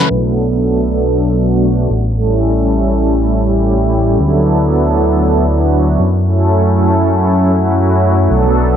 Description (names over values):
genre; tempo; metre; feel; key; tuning
nu-disco, nu disco; 117 BPM; 4/4; swing 55% on 16ths; B minor; A4 = 440 Hz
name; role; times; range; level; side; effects
warm analog pad; accompaniment; 0.0-8.8 s; F#3 to A4; -13 LUFS; right 1 dB; chorus, tremolo, ping-pong delay
fat analog bass; bass; 0.1-8.8 s; A1 to F#2; -14 LUFS; equal; none
congas; percussion; 8.4-8.5 s; none; -26 LUFS; right 4 dB; none
room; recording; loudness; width
light reverb, studio reverb; low-pass filter; -11 LUFS; side -8 dB against mid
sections
0.1-8.8 A section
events
filter sweep 0.1-8.8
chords
0.1 Bm7; 1.9 A7; 4.2 D69; 6.0 F#m7